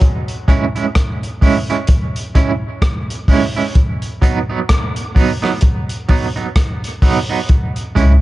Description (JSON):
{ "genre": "dub reggae", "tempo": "64 BPM", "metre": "4/4", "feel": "swing 60% on 16ths", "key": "C# minor", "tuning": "A4 = 440 Hz", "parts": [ { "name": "crunchy breakbeat drum kit", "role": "drums", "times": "0.0-8.2 s", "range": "hi-hat, kick drum, rim click", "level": "-14 LUFS", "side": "equal", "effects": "none" }, { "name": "electric guitar at the edge of break-up", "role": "accompaniment", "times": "0.5-8.1 s", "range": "F#3 to E4", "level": "-19 LUFS", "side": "right 5 dB", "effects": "tremolo, dub echo" }, { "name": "soft dub sub bass", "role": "bass", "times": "8.0-8.2 s", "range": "C#2", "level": "-9 LUFS", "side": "equal", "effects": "none" } ], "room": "little or no reverb", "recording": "dark, warm production, nothing above 11.0 kHz", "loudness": "-13 LUFS", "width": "side -17 dB against mid", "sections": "0.0-8.2 A section", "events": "break 0.0-7.5", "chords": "0.0 C#m; 3.8 B; 7.5 C#m" }